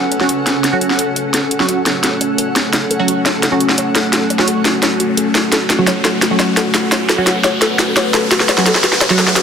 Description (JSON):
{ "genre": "dark technical drum and bass", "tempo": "172 BPM", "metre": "4/4", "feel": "straight", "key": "F# minor", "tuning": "A4 = 439 Hz", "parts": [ { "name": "deep dark ambient pad", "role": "sustained chords", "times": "0.0-9.4 s", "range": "A3 to G#5", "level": "-21 LUFS", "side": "left 2 dB", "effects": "chorus, built-in reverb" }, { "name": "riser", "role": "sound effects", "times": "2.2-9.4 s", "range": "none", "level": "-23 LUFS", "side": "equal", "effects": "none" }, { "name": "granular cloud pad", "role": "texture", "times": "0.0-9.4 s", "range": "C#4 to F#5", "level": "-20 LUFS", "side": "equal", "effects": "built-in reverb" }, { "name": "warbly dusty pluck", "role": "arpeggios", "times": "0.1-9.4 s", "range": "F#4 to C#5", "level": "-22 LUFS", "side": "left 2 dB", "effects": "chorus, tape echo" }, { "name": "drum and bass drum kit", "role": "drums", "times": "0.1-9.4 s", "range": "hi-hat, snare drum", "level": "-15 LUFS", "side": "equal", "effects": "overdrive, high-pass filter on hats, high-pass filter on snare, high-pass filter on toms, high-pass filter on room" }, { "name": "filtered dub chord stab", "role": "stabs", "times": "0.2-9.4 s", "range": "F#3 to F#4", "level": "-19 LUFS", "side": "right 2 dB", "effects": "phaser, analog chorus, vintage 12-bit sampler grit, tape echo" } ], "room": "moderate lush hall reverb, RT60 1.6 s", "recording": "dense, heavily limited modern master", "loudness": "-12 LUFS", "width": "side -7 dB against mid", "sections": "0.0-9.4 A section", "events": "build-up 0.0-9.4; drum fill 0.0-9.4; filter sweep on ambient pad 0.0-9.4; filter sweep on synth arpeggio sound 0.0-9.4; riser 2.2-9.4", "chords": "0.0 F#m" }